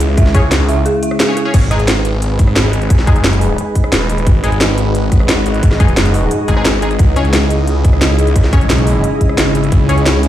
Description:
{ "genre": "dark technical drum and bass", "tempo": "176 BPM", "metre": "4/4", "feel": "straight", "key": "G# minor", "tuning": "A4 = 440 Hz", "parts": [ { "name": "sweeping resonant pad", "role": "sustained chords", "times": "0.0-10.3 s", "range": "C#3 to B4", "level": "-19 LUFS", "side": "left 2 dB", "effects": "chorus, sidechain pumping" }, { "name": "snarling distorted saw bass", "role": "bass", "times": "0.0-10.3 s", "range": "D#1 to C#2", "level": "-15 LUFS", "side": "equal", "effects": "distortion, tube saturation, sidechain pumping" }, { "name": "drum and bass drum kit", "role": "drums", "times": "0.0-10.3 s", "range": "crash cymbal, hi-hat, rim click, snare drum", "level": "-17 LUFS", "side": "equal", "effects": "studio reverb" }, { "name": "dark detuned synth bell", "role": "arpeggios", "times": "0.2-1.4 s", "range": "G#4 to E5", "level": "-20 LUFS", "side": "right 2 dB", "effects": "chorus, tremolo, sidechain pumping, ping-pong delay" }, { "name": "electronic kick drum", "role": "drums", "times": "0.2-9.8 s", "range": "none", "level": "-10 LUFS", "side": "equal", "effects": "studio reverb" }, { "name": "band-passed chord stab", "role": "stabs", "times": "0.3-9.9 s", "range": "G#3 to C#5", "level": "-22 LUFS", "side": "left 3 dB", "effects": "chorus, ping-pong delay" }, { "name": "ethereal airy pad", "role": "texture", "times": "2.2-10.3 s", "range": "C#4 to G#5", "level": "-23 LUFS", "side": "right 3 dB", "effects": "ensemble chorus, built-in reverb, sidechain pumping" } ], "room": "light reverb, digital ambience", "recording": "played on a big sound system in a bare room, large studio reverb", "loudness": "-10 LUFS", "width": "side -12 dB against mid", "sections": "0.0-1.5 A section; 1.5-10.3 A section", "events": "drop 0.0-1.5, 1.5-10.3; break 0.9-1.5", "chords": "0.0 C#m; 1.5 G#m; 7.0 C#m" }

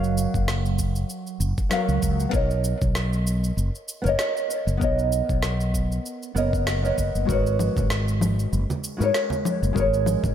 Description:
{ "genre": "sunset chillout", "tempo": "97 BPM", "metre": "4/4", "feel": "swing 55% on 16ths", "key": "unclear", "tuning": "A4 = 439 Hz", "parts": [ { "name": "nylon-string guitar", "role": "accompaniment", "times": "0.0-10.3 s", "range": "F#3 to E#5", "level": "-25 LUFS", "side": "moving between left 3 dB and right 6 dB", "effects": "auto-pan, analog delay" }, { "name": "mellow fretless electric bass", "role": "bass", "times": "0.0-10.3 s", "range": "F#1 to G#2", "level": "-24 LUFS", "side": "equal", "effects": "analog chorus" }, { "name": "electronic shaker, snare drum and congas", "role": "drums", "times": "0.0-10.3 s", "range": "none", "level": "-31 LUFS", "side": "left 1 dB", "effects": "none" }, { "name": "electronic kick drum", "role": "drums", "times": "0.3-10.3 s", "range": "none", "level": "-27 LUFS", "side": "equal", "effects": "none" }, { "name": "congas", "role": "percussion", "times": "7.8-10.3 s", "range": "none", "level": "-32 LUFS", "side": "right 2 dB", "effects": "none" } ], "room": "moderate plate reverb, RT60 2.5 s", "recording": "dreamy mix soaked in reverb", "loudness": "-21 LUFS", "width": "side -10 dB against mid", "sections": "0.0-10.3 A section", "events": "none", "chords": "0.0 F#maj7; 2.3 Bmaj9; 7.3 G#m11" }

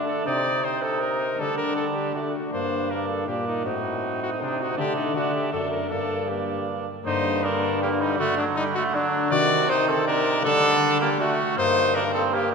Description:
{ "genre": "classical, renaissance-style consort dance", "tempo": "159 BPM", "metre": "3/4", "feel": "straight", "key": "G harmonic minor", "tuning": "A4 = 442 Hz", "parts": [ { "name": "clear cornet", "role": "melody", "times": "0.0-12.5 s", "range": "D4 to D5", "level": "-26 LUFS", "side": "left 3 dB", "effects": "none" }, { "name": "warm cor anglais", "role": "second line", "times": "0.0-12.5 s", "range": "F#3 to F#4", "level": "-27 LUFS", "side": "right 6 dB", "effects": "none" }, { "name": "concert harp", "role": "accompaniment", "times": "0.0-12.5 s", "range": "F#2 to D5", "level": "-30 LUFS", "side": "left 5 dB", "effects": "none" }, { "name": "warm bassoon", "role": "accompaniment", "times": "0.0-12.5 s", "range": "D3 to C4", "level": "-30 LUFS", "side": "left 1 dB", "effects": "none" }, { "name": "brilliant trombone", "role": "bass", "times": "0.0-12.5 s", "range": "F#2 to D3", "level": "-30 LUFS", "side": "right 2 dB", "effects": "none" } ], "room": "wet church reverb, RT60 3.2 s", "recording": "minimal, uncompressed stereo recording", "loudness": "-21 LUFS", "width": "side -5 dB against mid", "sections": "0.0-7.1 A section; 7.1-12.5 A section", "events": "none", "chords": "0.3 Cm; 1.4 Dsus4; 2.1 D; 2.5 Gm; 3.7 Adim; 4.8 Dsus4; 5.2 D; 5.9 Gm; 8.2 D; 9.3 Cm; 10.4 Dsus4; 11.2 D; 11.6 Gm" }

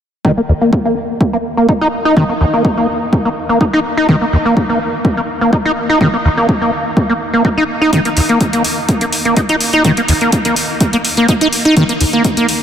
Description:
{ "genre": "acid house", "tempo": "125 BPM", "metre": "4/4", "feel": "straight", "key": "unclear", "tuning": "A4 = 441 Hz", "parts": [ { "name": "acid bass, saw", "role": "riff", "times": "0.2-12.5 s", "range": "Eb2 to Eb4", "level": "-12 LUFS", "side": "equal", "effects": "overdrive, analog chorus, sidechain pumping, diffuse ambient delay" }, { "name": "electronic kick drum", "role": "drums", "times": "0.2-12.3 s", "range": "none", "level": "-14 LUFS", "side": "equal", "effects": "overdrive, high-pass filter on kick" }, { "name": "electronic hi-hat", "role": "drums", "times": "7.9-12.6 s", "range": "none", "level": "-18 LUFS", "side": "left 1 dB", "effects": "none" } ], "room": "wet huge ambient reverb, RT60 9.0 s", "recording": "dreamy mix soaked in reverb", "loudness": "-11 LUFS", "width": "side -9 dB against mid", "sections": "0.2-12.6 A section", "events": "filter sweep on acid bass 0.2-12.6", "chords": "none" }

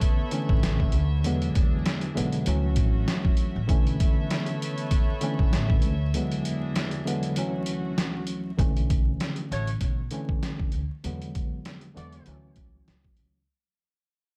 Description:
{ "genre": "hip hop, boom-bap hip-hop", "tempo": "98 BPM", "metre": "4/4", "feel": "swing 54% on 16ths", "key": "B dorian", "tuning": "A4 = 436 Hz", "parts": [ { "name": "tine electric piano", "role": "accompaniment", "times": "0.0-13.4 s", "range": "D2 to C#4", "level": "-32 LUFS", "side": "equal", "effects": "high-pass filter, low-pass filter" }, { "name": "warm studio string section", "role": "sustained chords", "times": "0.0-8.6 s", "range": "D3 to E5", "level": "-40 LUFS", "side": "equal", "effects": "high-pass filter, low-pass filter" }, { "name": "trip hop sampler-style drum kit", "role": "drums", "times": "0.0-13.3 s", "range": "hi-hat, kick drum, snare drum", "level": "-28 LUFS", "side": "equal", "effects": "none" }, { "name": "upright bass", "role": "bass", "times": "0.5-13.4 s", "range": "A1 to E2", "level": "-31 LUFS", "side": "equal", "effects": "none" }, { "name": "mellow horn section", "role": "stabs", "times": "9.5-12.4 s", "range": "A3 to D5", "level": "-40 LUFS", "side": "equal", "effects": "high-pass filter, low-pass filter, delay" } ], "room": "small room ambience", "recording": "vinyl crackle", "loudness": "-26 LUFS", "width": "mono", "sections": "0.0-8.6 A section; 8.6-13.5 B section", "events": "break 6.1-8.6; fade-out 8.6-13.5", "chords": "0.0 Bm11; 1.2 E7; 2.5 Dmaj9; 3.7 Bm11; 6.1 E7; 7.4 Dmaj9; 8.6 Bm11; 11.0 E7; 12.3 Dmaj9" }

